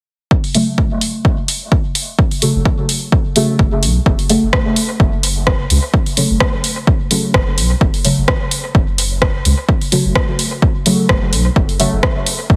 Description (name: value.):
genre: dub techno.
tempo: 128 BPM.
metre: 4/4.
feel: swing 55% on 16ths.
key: F# minor.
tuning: A4 = 440 Hz.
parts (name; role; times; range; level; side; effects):
electronic kick drum; drums; 0.3-12.6 s; none; -17 LUFS; equal; overdrive.
deep house drum kit; drums; 0.4-12.4 s; hi-hat, rim click; -20 LUFS; equal; overdrive, dub echo.
deep mellow chord stab; stabs; 0.5-12.0 s; C#3 to A3; -20 LUFS; equal; chorus, phaser, sidechain pumping, dub echo.
soft dub sub bass; bass; 2.5-12.6 s; F#1 to C#2; -20 LUFS; equal; sidechain pumping.
room: moderate lush hall reverb, RT60 1.6 s.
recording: heavily compressed radio sound, multiband compression.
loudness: -15 LUFS.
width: mono.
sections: 0.3-4.1 A section; 4.1-12.6 B section.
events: filter sweep on synth stab 0.3-4.1.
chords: 0.3 F#m.